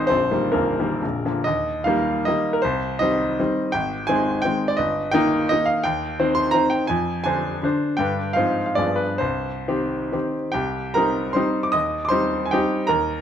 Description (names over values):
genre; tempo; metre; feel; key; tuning
classical, romantic triple-time dance for piano with dotted rhythms; 121-181 BPM; 3/4; rubato; Eb major, C minor from 5.9 s; A4 = 440 Hz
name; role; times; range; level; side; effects
bright grand piano; solo; 0.0-13.2 s; Bb0 to Eb6; -19 LUFS; equal; none
room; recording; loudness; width
moderate large studio reverb, RT60 1.4 s; dark, warm production; -19 LUFS; side -9 dB against mid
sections
0.0-1.5 A section; 1.5-10.6 B section; 10.6-13.2 C section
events
none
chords
0.1 Eb/Bb; 1.0 Bb; 1.5 Eb; 2.6 Cm; 3.7 Abmaj7; 4.8 Eb/G; 5.9 Cm/Eb; 6.9 Dm7b5/F; 8.0 G; 8.4 Fm/Ab; 8.8 G7b9; 9.2 Cm; 11.8 Cm/Eb